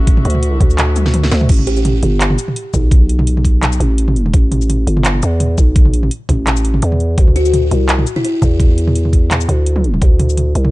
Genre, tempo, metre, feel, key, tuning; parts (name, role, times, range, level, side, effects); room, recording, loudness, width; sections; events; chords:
half-time drum and bass; 169 BPM; 4/4; swing 54% on 16ths, half-time; A dorian; A4 = 440 Hz
warm chamber string section; sustained chords; 0.0-1.5 s; D3 to E5; -27 LUFS; left 2 dB; sidechain pumping
growling 808-style bass; bass; 0.0-10.7 s; G1 to E2; -14 LUFS; equal; tube saturation
drum and bass drum kit; drums; 0.1-10.7 s; crash cymbal, handclaps, hi-hat, shaker, snare drum, toms; -18 LUFS; right 1 dB
electronic kick drum; drums; 0.1-10.1 s; -11 LUFS; equal
buzzing kalimba; melody; 1.7-1.8, 7.4-8.3 s; E4 to G4; -21 LUFS; left 2 dB; ping-pong delay
little or no reverb; dark, warm production, nothing above 10.4 kHz; -11 LUFS; side -19 dB against mid
0.0-1.5 A section; 1.5-10.7 A section
drop 0.0-1.5, 1.5-10.7; drum fill 1.0-1.5
0.0 Dadd9; 1.5 A5; 7.2 Dsus2